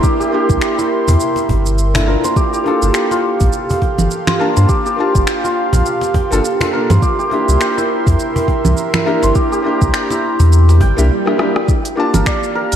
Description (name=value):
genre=organic downtempo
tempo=103 BPM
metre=4/4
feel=swing 58% on 16ths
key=G dorian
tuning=A4 = 441 Hz
part: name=felt-muted upright piano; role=accompaniment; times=0.0-12.8 s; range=Bb3 to A5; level=-20 LUFS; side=left 1 dB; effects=sidechain pumping, digital delay, slapback echo
part: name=warm analog pad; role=sustained chords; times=0.0-12.8 s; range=G4 to C6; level=-22 LUFS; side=right 2 dB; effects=chorus, sidechain pumping
part: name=santur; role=arpeggios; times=0.0-12.8 s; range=E4 to G5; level=-19 LUFS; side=equal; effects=low-pass filter, digital delay, slapback echo
part: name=electronic kick drum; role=drums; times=0.0-12.4 s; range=none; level=-16 LUFS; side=equal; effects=none
part: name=organic electronic drum kit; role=drums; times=0.0-12.8 s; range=congas, finger snaps, hi-hat, rim click, shaker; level=-21 LUFS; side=right 2 dB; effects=none
part: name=cajon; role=percussion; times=0.2-10.9 s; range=none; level=-24 LUFS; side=left 1 dB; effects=none
part: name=warm sub bass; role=bass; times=0.5-12.8 s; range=G1 to G2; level=-12 LUFS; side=equal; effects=sidechain pumping
part: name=swell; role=sound effects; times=10.7-11.7 s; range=none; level=-24 LUFS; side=right 5 dB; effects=slapback echo
room=moderate lush hall reverb, RT60 1.8 s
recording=big arena sound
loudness=-12 LUFS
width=side -9 dB against mid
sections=0.0-11.7 A section; 11.7-12.8 B section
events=swell 10.7-11.7; break 11.1-11.7; drum fill 11.2-11.7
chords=0.0 C7; 11.7 Gm7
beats=| 0.03 0.61 1.20 1.78 | 2.36 2.95 3.53 4.11 | 4.69 5.28 5.86 6.44 | 7.02 7.61 8.19 8.77 | 9.35 9.94 10.52 11.10 | 11.68 12.27